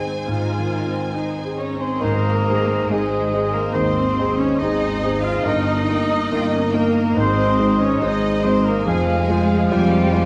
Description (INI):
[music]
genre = classical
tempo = 70 BPM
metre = 4/4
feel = rubato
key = Ab major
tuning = A4 = 437 Hz
[part]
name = clear concert grand piano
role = melody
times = 0.0-10.3 s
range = Eb2 to C5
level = -23 LUFS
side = equal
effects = none
[part]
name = clear studio violin section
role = melody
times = 0.0-10.3 s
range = C5 to Ab5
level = -38 LUFS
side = equal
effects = none
[part]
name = rich studio violin section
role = second line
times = 0.0-10.3 s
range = Ab3 to F5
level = -34 LUFS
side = equal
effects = none
[part]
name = rich studio viola section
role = accompaniment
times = 0.0-10.3 s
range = G3 to F4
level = -32 LUFS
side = equal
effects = none
[part]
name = clear studio cello section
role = bass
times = 0.0-10.3 s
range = Ab2 to F4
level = -28 LUFS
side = equal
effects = none
[part]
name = mellow clarinet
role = second line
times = 1.6-10.3 s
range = G4 to F5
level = -34 LUFS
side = equal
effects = none
[part]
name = silver concert flute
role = second line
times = 1.6-10.3 s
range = G5 to F6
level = -31 LUFS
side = equal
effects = none
[part]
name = warm oboe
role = second line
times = 2.0-9.2 s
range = Bb4 to F5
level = -34 LUFS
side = equal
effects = none
[part]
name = mellow bassoon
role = accompaniment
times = 2.0-9.2 s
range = Eb3 to F3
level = -32 LUFS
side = equal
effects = none
[part]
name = mellow French horn section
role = sustained chords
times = 2.0-10.3 s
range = Ab4 to C5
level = -31 LUFS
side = equal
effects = none
[part]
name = clear trumpet section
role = stabs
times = 2.0-10.3 s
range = Eb5 to F5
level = -31 LUFS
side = equal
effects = none
[part]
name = dark tuba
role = bass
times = 2.0-10.3 s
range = F1 to Ab1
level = -30 LUFS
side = equal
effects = none
[part]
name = rich studio double bass section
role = bass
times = 2.0-10.3 s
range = G1 to F2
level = -29 LUFS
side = equal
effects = none
[sound]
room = moderate scoring stage reverb, RT60 2.0 s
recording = vinyl crackle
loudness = -19 LUFS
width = mono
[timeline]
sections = 0.0-2.0 A section; 2.0-10.3 B section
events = none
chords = 0.0 Ab; 5.5 Eb/G; 7.2 Ab; 8.9 Fm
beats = 0.28 1.15 | 2.02 2.89 3.75 4.60 | 5.45 6.31 7.18 8.03 | 8.88 9.72